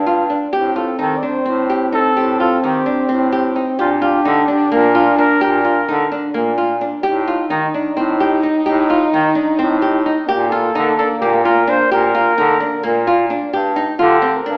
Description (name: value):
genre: contemporary instrumental, chamber music in an uneven meter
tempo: 258 BPM (eighths)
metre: 7/8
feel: straight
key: G minor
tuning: A4 = 439 Hz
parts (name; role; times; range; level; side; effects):
- warm flugelhorn; melody; 0.0-6.3, 10.3-14.6 s; F4 to D5; -21 LUFS; equal; none
- bright bass clarinet; bass; 0.0-14.6 s; G2 to Eb3; -22 LUFS; equal; none
- flamenco guitar; arpeggios; 0.1-14.6 s; Bb3 to G4; -21 LUFS; equal; none
- warm French horn; second line; 0.5-13.3 s; Bb3 to Eb4; -21 LUFS; equal; none
room: moderate recital hall reverb, RT60 1.6 s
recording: recorded in a church or concert hall, AM radio sound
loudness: -16 LUFS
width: mono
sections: 0.5-13.5 A section; 13.5-14.6 B section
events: none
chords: 0.0 G5; 0.5 Am7b5; 3.8 Gm7/Bb; 7.0 A7(b5, no3); 10.3 Gm7/Bb (rootless); 13.5 Gm